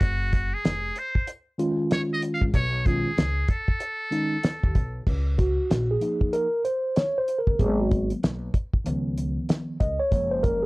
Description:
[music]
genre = hip hop, jazz-hop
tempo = 95 BPM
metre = 4/4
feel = swing 62% on 16ths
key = Db major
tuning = A4 = 439 Hz
[part]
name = trumpet with metal mute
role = melody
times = 0.0-5.1 s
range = Gb4 to F5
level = -29 LUFS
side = equal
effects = none
[part]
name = upright bass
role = bass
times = 0.0-10.6 s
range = F1 to Eb2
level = -27 LUFS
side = equal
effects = none
[part]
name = cloth-damped thuddy drum kit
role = drums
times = 0.0-10.6 s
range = crash cymbal, hi-hat, kick drum, snare drum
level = -24 LUFS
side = equal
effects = none
[part]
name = mellow tine electric piano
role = accompaniment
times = 1.6-10.7 s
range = Eb3 to Eb5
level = -25 LUFS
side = equal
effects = medium stereo tremolo
[sound]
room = little or no reverb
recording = dry, gritty hardware recording, cassette tape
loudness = -22 LUFS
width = side -23 dB against mid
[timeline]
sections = 0.0-5.1 A section; 5.1-10.7 A section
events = muted trumpet solo 0.0-5.1; tine electric piano solo 5.1-10.7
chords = 0.0 Gbsus2; 2.5 Cb9; 5.1 Db69; 7.6 Abm7; 8.9 Db9; 10.1 Gbmaj9

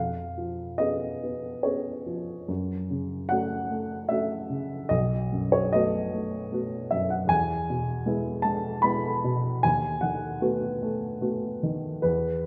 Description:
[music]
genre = classical, romantic nocturne for solo piano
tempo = 75 BPM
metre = 3/4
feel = uneven beats, rubato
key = unclear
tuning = A4 = 440 Hz
[part]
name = warm upright piano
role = solo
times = 0.0-12.5 s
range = B1 to B5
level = -28 LUFS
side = equal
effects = none
[sound]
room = wet recital hall reverb, RT60 1.4 s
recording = none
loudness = -28 LUFS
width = mono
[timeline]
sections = 0.0-12.5 A section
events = none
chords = 0.0 C#7/E#; 2.5 F#m; 4.9 B7; 7.3 E; 9.6 B7/D#

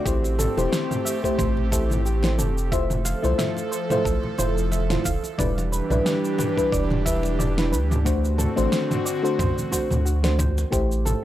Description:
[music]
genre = sunset chillout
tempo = 90 BPM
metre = 4/4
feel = swing 55% on 16ths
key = A minor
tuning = A4 = 439 Hz
[part]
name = mellow FM electric piano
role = accompaniment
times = 0.0-11.2 s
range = G3 to C5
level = -26 LUFS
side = left 2 dB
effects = chorus, phaser, auto-pan, low-pass filter, analog delay
[part]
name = airy breathy pad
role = sustained chords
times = 0.0-10.7 s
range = D3 to A4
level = -29 LUFS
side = right 1 dB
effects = chorus, tremolo
[part]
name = soft round pluck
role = arpeggios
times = 0.1-11.2 s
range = F#4 to F5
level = -32 LUFS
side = right 3 dB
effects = wide subtle chorus, analog delay
[part]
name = warm sub bass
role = bass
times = 0.1-11.1 s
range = E1 to F#2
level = -24 LUFS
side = equal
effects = none
[part]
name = deep house drum kit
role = drums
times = 0.1-11.2 s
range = cabasa, snare drum, toms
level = -28 LUFS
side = equal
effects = none
[part]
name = electronic kick drum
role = drums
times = 0.1-10.9 s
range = none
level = -29 LUFS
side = equal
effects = none
[part]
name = congas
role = percussion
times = 0.2-10.7 s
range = none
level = -36 LUFS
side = right 2 dB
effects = none
[sound]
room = little or no reverb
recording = dry, gritty hardware recording, transformer saturation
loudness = -20 LUFS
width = side -13 dB against mid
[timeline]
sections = 0.0-10.7 A section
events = none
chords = 0.1 Am7; 2.7 Fmaj7; 5.4 Em7; 8.1 D7; 10.7 Am7

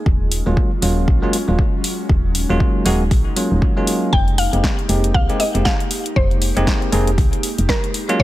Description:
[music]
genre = deep house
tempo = 118 BPM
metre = 4/4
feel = swing 59% on 16ths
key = F phrygian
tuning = A4 = 444 Hz
[part]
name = airy breathy pad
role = sustained chords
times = 0.0-8.2 s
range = Gb3 to G4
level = -27 LUFS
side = equal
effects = chorus, sidechain pumping
[part]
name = woody FM bass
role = bass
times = 0.1-8.2 s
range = Eb1 to C2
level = -19 LUFS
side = equal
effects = sidechain pumping
[part]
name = electronic kick drum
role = drums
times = 0.1-8.2 s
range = none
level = -18 LUFS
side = equal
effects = none
[part]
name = deep house drum kit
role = drums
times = 0.3-8.2 s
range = hi-hat, snare drum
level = -24 LUFS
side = left 1 dB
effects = none
[part]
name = bell-like tine electric piano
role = stabs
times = 0.5-8.2 s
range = Gb3 to Ab4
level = -21 LUFS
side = equal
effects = sidechain pumping, ping-pong delay
[part]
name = mallet-like synth pluck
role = melody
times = 4.1-8.2 s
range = Bb4 to G5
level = -23 LUFS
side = left 1 dB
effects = chorus, ping-pong delay
[sound]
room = little or no reverb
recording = none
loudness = -15 LUFS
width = side -16 dB against mid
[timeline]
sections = 0.0-8.2 A section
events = none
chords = 0.1 Ebm11; 4.1 Fm11

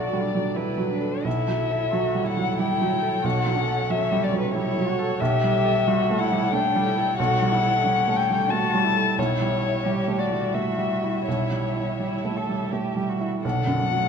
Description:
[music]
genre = neoclassical piano and strings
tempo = 80-93 BPM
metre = 3/4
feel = rubato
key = unclear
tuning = A4 = 437 Hz
[part]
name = muted violin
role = melody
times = 0.0-14.1 s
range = B4 to A5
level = -25 LUFS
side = left 8 dB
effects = none
[part]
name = muted cello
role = second line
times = 0.0-14.1 s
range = B2 to A4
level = -30 LUFS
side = right 5 dB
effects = none
[part]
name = felt-muted upright piano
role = accompaniment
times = 0.0-14.1 s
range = B1 to A4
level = -24 LUFS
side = right 3 dB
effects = none
[part]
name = muted chamber string section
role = sustained chords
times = 0.0-14.1 s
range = F#3 to E5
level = -34 LUFS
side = left 2 dB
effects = none
[sound]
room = moderate scoring stage reverb, RT60 1.9 s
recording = minimal, uncompressed stereo recording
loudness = -21 LUFS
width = side -6 dB against mid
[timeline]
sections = 0.0-13.4 A section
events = none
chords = 0.0 Bm7; 1.3 F#m7/B; 5.2 A7/B; 9.2 C#dim/B; 13.4 Bm7

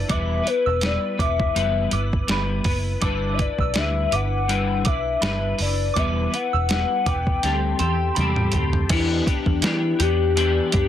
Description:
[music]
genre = indie pop, bedroom pop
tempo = 82 BPM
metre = 4/4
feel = swing 55% on 16ths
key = unclear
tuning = A4 = 440 Hz
[part]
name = hollow clarinet-like synth lead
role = melody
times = 0.0-10.9 s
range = D4 to G5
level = -25 LUFS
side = left 6 dB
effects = lush chorus, slapback echo
[part]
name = clean electric guitar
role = accompaniment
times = 0.0-10.9 s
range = D3 to B4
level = -26 LUFS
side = left 3 dB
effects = ensemble chorus, vibrato effect
[part]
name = vintage muted picked electric bass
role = bass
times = 0.0-10.9 s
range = E1 to E3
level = -24 LUFS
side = right 1 dB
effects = none
[part]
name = soft synth bell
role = second line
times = 0.1-8.7 s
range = B5 to E6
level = -30 LUFS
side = right 9 dB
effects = lush chorus, slapback echo
[part]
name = boom bap sampler-style drum kit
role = drums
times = 0.1-10.9 s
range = crash cymbal, hi-hat, kick drum, snare drum, toms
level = -24 LUFS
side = right 1 dB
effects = overdrive
[sound]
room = light reverb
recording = dense, heavily limited modern master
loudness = -19 LUFS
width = side -10 dB against mid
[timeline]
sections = 0.0-8.9 A section; 8.9-10.9 B section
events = drum fill 7.4-8.9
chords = 0.1 Em; 3.0 G6; 6.0 Em; 7.4 D7sus4; 8.9 Em7

